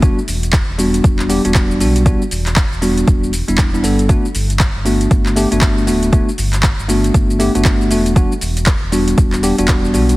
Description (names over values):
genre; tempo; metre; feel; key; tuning
deep house; 118 BPM; 4/4; swing 60% on 16ths; unclear; A4 = 437 Hz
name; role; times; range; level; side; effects
bell-like tine electric piano; stabs; 0.0-10.2 s; G3 to A4; -16 LUFS; equal; analog chorus, digital delay
sub bass with octave; bass; 0.0-10.2 s; D1 to B1; -18 LUFS; equal; sidechain pumping
deep house drum kit; drums; 0.0-10.2 s; handclaps, hi-hat, shaker; -21 LUFS; equal; overdrive
electronic kick drum; drums; 0.0-9.8 s; none; -14 LUFS; equal; overdrive
room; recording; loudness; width
little or no reverb; heavily compressed radio sound; -12 LUFS; side -19 dB against mid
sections
0.0-10.2 A section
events
none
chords
0.0 Em9; 4.1 Gmaj9